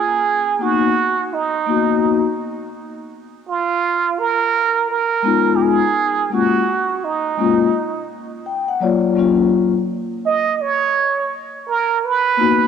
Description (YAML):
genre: hip hop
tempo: 84 BPM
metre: 4/4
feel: swing 61% on 16ths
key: F# major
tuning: A4 = 439 Hz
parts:
  - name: trumpet with plunger mute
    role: melody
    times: 0.0-12.7 s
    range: D#4 to D#5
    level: -17 LUFS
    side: right 7 dB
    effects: cassette tape
  - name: vibraphone with soft mallets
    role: accompaniment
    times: 0.6-12.7 s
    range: F#3 to G5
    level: -18 LUFS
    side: left 6 dB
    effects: cassette tape
room: moderate lush hall reverb, RT60 2.7 s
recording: home recording on cassette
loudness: -15 LUFS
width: side -7 dB against mid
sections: 0.0-12.7 A section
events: vibraphone fill 8.1-9.2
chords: 0.0 N.C.; 0.6 Bmaj7/A#; 3.5 G#m69; 6.3 F#maj9; 8.5 F#maj7; 12.0 Bmaj7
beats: | 0.60 1.32 2.03 2.74 | 3.46 4.17 4.89 5.60 | 6.32 7.03 7.74 8.46 | 9.17 9.89 10.60 11.32 | 12.03